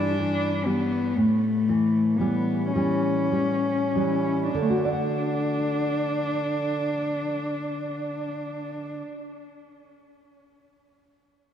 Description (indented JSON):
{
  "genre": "romantic duo for cello and classical guitar",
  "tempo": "30-44 BPM (dotted quarters)",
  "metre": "12/8",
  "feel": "rubato",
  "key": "D major",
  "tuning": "A4 = 440 Hz",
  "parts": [
    { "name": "dark cello", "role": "melody", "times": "0.0-9.0 s", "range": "A3 to D4", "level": "-25 LUFS", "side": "left 2 dB", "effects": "tape echo" },
    { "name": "nylon-string guitar", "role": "accompaniment", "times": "0.0-9.4 s", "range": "G2 to F#5", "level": "-27 LUFS", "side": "right 1 dB", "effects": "analog chorus" }
  ],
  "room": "wet lush hall reverb, RT60 2.5 s",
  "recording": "dreamy mix soaked in reverb",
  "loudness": "-23 LUFS",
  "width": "side -9 dB against mid",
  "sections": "0.0-4.5 A section; 4.5-10.7 B section",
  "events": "slowing down 0.0-4.5",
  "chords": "0.0 Em7/G; 1.2 A7; 4.5 D"
}